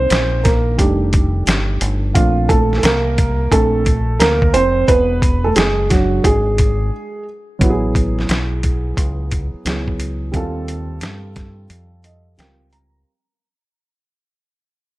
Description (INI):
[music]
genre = hip hop, jazz-hop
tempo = 88 BPM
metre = 4/4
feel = swing 66% on 16ths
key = unclear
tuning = A4 = 440 Hz
[part]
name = dark upright piano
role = accompaniment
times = 0.0-13.1 s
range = Eb3 to A#5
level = -18 LUFS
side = right 2 dB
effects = none
[part]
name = deep dub fingered electric bass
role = bass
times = 0.0-13.0 s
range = E1 to G2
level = -20 LUFS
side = equal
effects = none
[part]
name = boom bap sampler-style drum kit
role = drums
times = 0.1-12.9 s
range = hi-hat, kick drum, snare drum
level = -17 LUFS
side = equal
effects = none
[sound]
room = digital ambience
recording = none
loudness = -14 LUFS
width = side -18 dB against mid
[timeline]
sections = 0.0-7.6 A section; 7.6-13.1 B section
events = upright piano solo 0.0-7.6; break 6.9-7.6, 11.7-13.1; fade-out 7.6-13.1; upright piano fill 11.7-13.1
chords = 0.0 Cm7; 0.8 F13; 2.2 Bbmaj9; 4.9 E9; 7.6 Amaj9; 10.3 D#9